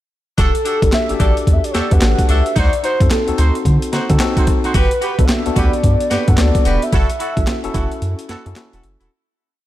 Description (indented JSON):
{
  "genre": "R&B, new jack swing",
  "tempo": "110 BPM",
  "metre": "4/4",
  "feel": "swing 62% on 16ths",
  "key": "unclear",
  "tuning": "A4 = 441 Hz",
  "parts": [
    { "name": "warm velvety synth lead", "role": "melody", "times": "0.4-8.6 s", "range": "A4 to F#5", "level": "-22 LUFS", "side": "equal", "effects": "chorus" },
    { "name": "mellow horn section", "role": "stabs", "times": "0.4-9.1 s", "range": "D4 to C5", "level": "-24 LUFS", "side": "right 2 dB", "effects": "none" },
    { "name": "round analog bass", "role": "bass", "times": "0.4-9.1 s", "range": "E1 to D3", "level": "-16 LUFS", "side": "equal", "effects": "none" },
    { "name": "boom bap sampler-style drum kit", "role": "drums", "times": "0.4-9.1 s", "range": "handclaps, hi-hat, kick drum, snare drum", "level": "-17 LUFS", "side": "equal", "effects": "overdrive" },
    { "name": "tine electric piano", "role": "accompaniment", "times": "0.8-9.1 s", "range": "B3 to B4", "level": "-23 LUFS", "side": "left 2 dB", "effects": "medium stereo tremolo" }
  ],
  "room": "digital ambience",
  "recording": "none",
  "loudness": "-13 LUFS",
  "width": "side -14 dB against mid",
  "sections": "0.4-9.1 verse",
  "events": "fade-out 6.9-9.1; break 8.0-9.1",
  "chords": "0.4 Em11; 2.6 D7b9; 4.7 Gmaj7; 6.9 F#m7"
}